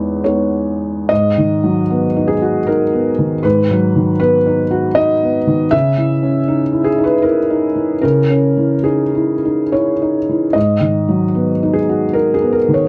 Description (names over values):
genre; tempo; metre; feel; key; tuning
neoclassical minimalist piano; 66-81 BPM; 3/4; rubato; G# minor; A4 = 440 Hz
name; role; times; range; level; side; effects
felt-muted upright piano; solo; 0.0-12.9 s; E2 to E5; -15 LUFS; equal; none
room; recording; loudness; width
light reverb; worn, warbling old tape, cassette tape, warbly pitch drift; -15 LUFS; mono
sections
0.0-1.1 A section; 1.1-12.9 B section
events
none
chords
0.0 Emaj7; 1.1 G#m7; 5.7 C#madd9; 10.6 G#m7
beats
0.26 | 1.10 1.90 2.67 | 3.44 4.21 4.97 | 5.73 6.47 7.23 | 8.03 8.85 9.73 | 10.55 11.35 12.15